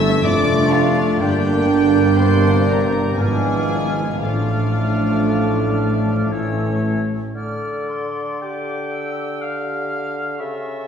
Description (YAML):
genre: classical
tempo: 59 BPM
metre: 3/4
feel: uneven beats, rubato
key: D minor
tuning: A4 = 437 Hz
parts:
  - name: warm studio violin section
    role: melody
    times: 0.0-6.3 s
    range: F5 to E6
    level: -28 LUFS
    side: left 3 dB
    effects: none
  - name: dark clarinet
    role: second line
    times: 0.0-10.9 s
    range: D4 to A4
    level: -27 LUFS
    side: right 1 dB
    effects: none
  - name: warm oboe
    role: second line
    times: 0.0-10.9 s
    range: C#5 to G5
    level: -28 LUFS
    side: left 1 dB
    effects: none
  - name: warm studio violin section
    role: second line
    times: 0.0-6.3 s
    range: F4 to E5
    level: -32 LUFS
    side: left 4 dB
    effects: none
  - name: dark symphonic viola section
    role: accompaniment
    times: 0.0-7.2 s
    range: A3 to E4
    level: -24 LUFS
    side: right 3 dB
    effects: none
  - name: warm bassoon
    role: accompaniment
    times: 0.0-10.9 s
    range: C#3 to B3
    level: -26 LUFS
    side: left 1 dB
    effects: none
  - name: bright trombone section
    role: sustained chords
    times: 0.0-7.0 s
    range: A2 to A3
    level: -26 LUFS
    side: right 1 dB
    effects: none
  - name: warm French horn section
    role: sustained chords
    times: 0.0-7.0 s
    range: G#3 to E4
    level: -26 LUFS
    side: right 1 dB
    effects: none
  - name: dark studio cello section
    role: bass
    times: 0.0-7.1 s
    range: F2 to A2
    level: -24 LUFS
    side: right 1 dB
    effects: none
  - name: dark studio double bass section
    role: bass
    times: 0.0-7.1 s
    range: F1 to A1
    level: -24 LUFS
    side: equal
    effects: none
  - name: mellow tuba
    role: bass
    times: 0.0-7.1 s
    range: F1 to A1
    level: -25 LUFS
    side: right 2 dB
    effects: none
  - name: bright flute section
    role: second line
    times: 0.3-10.9 s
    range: C6 to A6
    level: -31 LUFS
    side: left 2 dB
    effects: none
room: wet scoring stage reverb, RT60 1.9 s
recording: heard from further back in the room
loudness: -16 LUFS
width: side -7 dB against mid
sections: 0.0-7.3 A section; 7.3-10.9 B section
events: none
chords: 0.2 Dm/F; 1.2 Gm; 3.2 G#dim7; 4.2 Dm/A; 6.3 A; 7.3 Dm